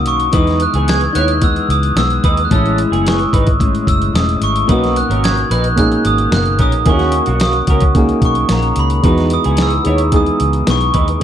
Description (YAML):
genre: indie pop, bedroom pop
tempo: 110 BPM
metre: 4/4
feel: straight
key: unclear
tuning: A4 = 440 Hz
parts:
  - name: glockenspiel with soft plastic mallets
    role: melody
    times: 0.0-11.2 s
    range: A#5 to G#6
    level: -18 LUFS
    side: right 1 dB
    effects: wide subtle chorus, slapback echo
  - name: nylon-string guitar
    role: accompaniment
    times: 0.0-11.2 s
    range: A2 to G#4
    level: -20 LUFS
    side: left 4 dB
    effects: wide subtle chorus, vibrato effect
  - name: vintage muted fingered electric bass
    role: bass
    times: 0.0-11.2 s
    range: E1 to E2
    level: -17 LUFS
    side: equal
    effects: none
  - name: dusty soul sampler-style drum kit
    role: drums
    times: 0.1-11.2 s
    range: hi-hat, kick drum, snare drum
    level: -16 LUFS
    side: equal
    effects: none
  - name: electric guitar through a small old amp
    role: second line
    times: 0.3-11.1 s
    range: A#3 to C#5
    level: -21 LUFS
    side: right 4 dB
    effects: analog chorus, slapback echo
  - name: warm upright piano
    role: accompaniment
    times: 4.7-11.2 s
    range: G#3 to G#4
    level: -20 LUFS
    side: right 4 dB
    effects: none
room: little or no reverb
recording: dry, close 1970s-style studio recording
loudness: -11 LUFS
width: side -10 dB against mid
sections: 0.0-11.2 A section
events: none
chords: 0.3 Emaj7; 2.5 Amaj7; 4.7 Bmaj7; 6.9 D#m7; 9.0 Emaj7